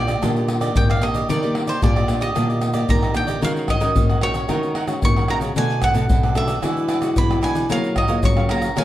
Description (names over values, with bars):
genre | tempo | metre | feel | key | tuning
samba and choro | 112 BPM | 4/4 | straight | Eb major, Eb minor from 3.4 s | A4 = 441 Hz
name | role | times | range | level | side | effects
bowl-back mandolin | melody | 0.0-8.8 s | C5 to Db6 | -25 LUFS | right 2 dB | slapback echo, plate reverb
cavaquinho | accompaniment | 0.0-8.8 s | D4 to Gb5 | -29 LUFS | right 5 dB | none
nylon-string guitar | accompaniment | 0.0-8.8 s | F#2 to Ab4 | -26 LUFS | left 1 dB | none
nylon-string guitar | bass | 0.0-8.8 s | Bb2 to Gb3 | -24 LUFS | equal | none
egg shaker, pandeiro, tamborim and surdo | percussion | 0.1-8.8 s | none | -20 LUFS | left 1 dB | none
room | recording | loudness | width
light reverb | dark, warm production | -17 LUFS | side -13 dB against mid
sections
0.0-3.4 A section; 3.4-8.8 B section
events
none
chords
0.0 Ebmaj7; 3.4 Ebm7; 5.6 Bm7; 6.6 E9; 7.7 Gbmaj9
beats
0.23 0.76 | 1.30 1.83 2.36 2.90 | 3.43 3.97 4.50 5.03 | 5.57 6.10 6.63 7.17 | 7.70 8.23 8.77